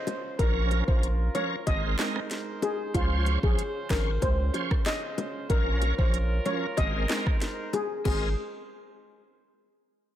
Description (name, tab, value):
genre	dancehall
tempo	94 BPM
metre	4/4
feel	straight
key	Ab major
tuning	A4 = 441 Hz
part	steel pan	melody	0.0-8.3 s	F4 to Eb5	-32 LUFS	left 3 dB	tape echo
part	dark brass ensemble	sustained chords	0.0-8.4 s	Db3 to C5	-38 LUFS	right 2 dB	sidechain pumping
part	afro-pop drum kit	drums	0.1-8.2 s	crash cymbal, handclaps, hi-hat, kick drum, rim click, snare drum	-28 LUFS	equal	none
part	bongos	percussion	0.1-8.3 s	none	-38 LUFS	left 5 dB	none
part	bright tonewheel organ	accompaniment	0.4-8.3 s	F3 to C5	-34 LUFS	right 2 dB	overdrive, chorus vibrato, slow rotary speaker, sidechain pumping
part	saturated sub bass	bass	0.4-8.3 s	Ab1 to Db2	-27 LUFS	equal	none
room	light reverb, studio ambience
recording	none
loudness	-25 LUFS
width	side -12 dB against mid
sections	0.0-8.1 A section; 8.1-10.2 B section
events	none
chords	0.4 Bbm; 1.7 Abadd9; 2.9 Dbmaj7; 5.5 Bbm; 6.8 Abadd9